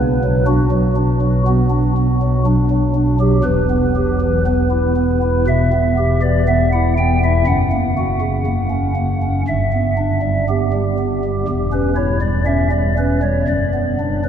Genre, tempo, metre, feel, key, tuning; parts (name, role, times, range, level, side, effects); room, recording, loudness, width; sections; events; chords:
classical, chorale-style piece for pipe organ; 60 BPM; 4/4; rubato; B minor; A4 = 443 Hz
pipe organ, stopped flute; solo; 0.0-14.3 s; E1 to G5; -14 LUFS; equal
wet cathedral reverb, RT60 5.4 s; minimal, uncompressed stereo recording; -14 LUFS; side -8 dB against mid
0.0-14.3 A section
0.0 Bm; 3.4 Em; 7.5 F#; 9.5 G; 11.5 C#dim/E; 13.5 Bm/F#